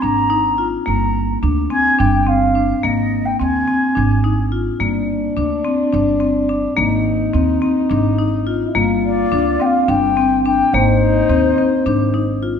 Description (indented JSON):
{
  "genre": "contemporary instrumental, chamber music in an uneven meter",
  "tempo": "213 BPM (eighths)",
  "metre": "7/8",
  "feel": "straight",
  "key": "G phrygian",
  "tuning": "A4 = 441 Hz",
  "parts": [
    { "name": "mellow wooden flute", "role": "melody", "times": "0.0-4.5, 9.1-12.4 s", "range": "C5 to Bb5", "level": "-18 LUFS", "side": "left 2 dB", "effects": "none" },
    { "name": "marimba with hard mallets", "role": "arpeggios", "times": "0.0-12.6 s", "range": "Bb3 to F4", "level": "-18 LUFS", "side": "left 3 dB", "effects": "none" },
    { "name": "upright bass", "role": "bass", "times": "0.0-12.6 s", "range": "G1 to Eb2", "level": "-20 LUFS", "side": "right 3 dB", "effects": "none" },
    { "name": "mellow French horn", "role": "second line", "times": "4.8-12.4 s", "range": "D4 to F4", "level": "-21 LUFS", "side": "left 4 dB", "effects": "none" }
  ],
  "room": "wet recital hall reverb, RT60 1.6 s",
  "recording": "none",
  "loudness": "-14 LUFS",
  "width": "side -7 dB against mid",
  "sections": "0.0-12.6 A section",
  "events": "none",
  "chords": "0.0 Absus2; 0.9 Gm; 2.8 Abadd9; 4.8 Gm; 6.8 Abadd9; 8.8 Gm; 10.7 Ab"
}